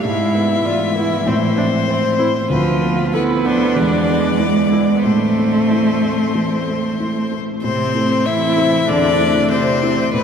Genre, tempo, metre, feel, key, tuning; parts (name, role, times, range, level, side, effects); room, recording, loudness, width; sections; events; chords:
quick classical-period movement for piano quartet; 95 BPM; 4/4; uneven beats; A minor; A4 = 441 Hz
clear violin; melody; 0.0-10.2 s; B4 to E5; -21 LUFS; left 6 dB
rich cello; second line; 0.0-10.2 s; B2 to B3; -20 LUFS; right 3 dB
dark grand piano; accompaniment; 0.0-10.2 s; D2 to D5; -19 LUFS; left 1 dB
rich viola; accompaniment; 0.0-10.2 s; B3 to F4; -22 LUFS; right 2 dB
wet cathedral reverb, RT60 6.4 s; -14 LUFS; side -7 dB against mid
0.0-7.6 A section; 7.6-10.2 B section
0.1 E7/G#; 1.3 Am; 2.5 Bm7b5/D; 3.8 E7; 5.0 Am